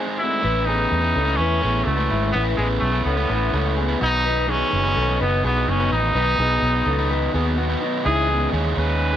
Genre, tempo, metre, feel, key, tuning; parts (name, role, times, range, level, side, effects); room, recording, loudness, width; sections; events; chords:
indie pop; 126 BPM; 4/4; straight; A4 = 440 Hz
crunchy overdriven guitar; accompaniment; 0.0-9.2 s; B2 to B4; -25 LUFS; right 4 dB; plate reverb
electric guitar through a small old amp; arpeggios; 0.0-9.2 s; F#3 to B4; -26 LUFS; left 6 dB; plate reverb, analog delay
clear trumpet; melody; 0.2-9.2 s; G#3 to B4; -22 LUFS; equal; plate reverb
vintage muted fingered electric bass; bass; 0.4-9.2 s; F#1 to E2; -23 LUFS; equal
light reverb; -18 LUFS; side -10 dB against mid
0.4-8.1 A section; 8.1-9.2 B section
break 0.0-0.4
0.4 Aadd9; 4.0 B; 8.1 C#madd9